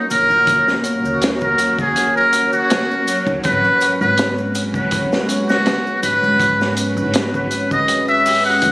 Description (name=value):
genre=trip hop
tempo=81 BPM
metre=4/4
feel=straight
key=unclear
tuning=A4 = 440 Hz
part: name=trumpet with metal mute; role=melody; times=0.0-8.7 s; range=Gb4 to Gb5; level=-16 LUFS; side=equal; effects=tape echo
part: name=deep dark ambient pad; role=sustained chords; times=0.0-8.7 s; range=Ab3 to Db5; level=-24 LUFS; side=equal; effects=chorus, built-in reverb
part: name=backwards swelling texture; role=texture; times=0.0-8.7 s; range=Gb3 to Gb4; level=-26 LUFS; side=equal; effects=built-in reverb
part: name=upright bass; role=bass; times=0.1-8.7 s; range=Ab1 to Ab2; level=-25 LUFS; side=equal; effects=none
part: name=crunchy breakbeat drum kit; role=drums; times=0.1-8.7 s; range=hi-hat, kick drum, snare drum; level=-21 LUFS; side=equal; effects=none
part: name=maracas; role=percussion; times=0.1-8.7 s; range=none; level=-36 LUFS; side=left 2 dB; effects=none
room=moderate echo chamber reverb, RT60 2.0 s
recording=recorded on a phone in the room, club reverb, compression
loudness=-14 LUFS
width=side -21 dB against mid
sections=0.0-8.7 A section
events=none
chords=0.0 Ebm7; 3.4 Abm7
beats=| 0.48 1.22 1.96 2.70 | 3.44 4.18 4.93 5.67 | 6.41 7.15 7.89 8.63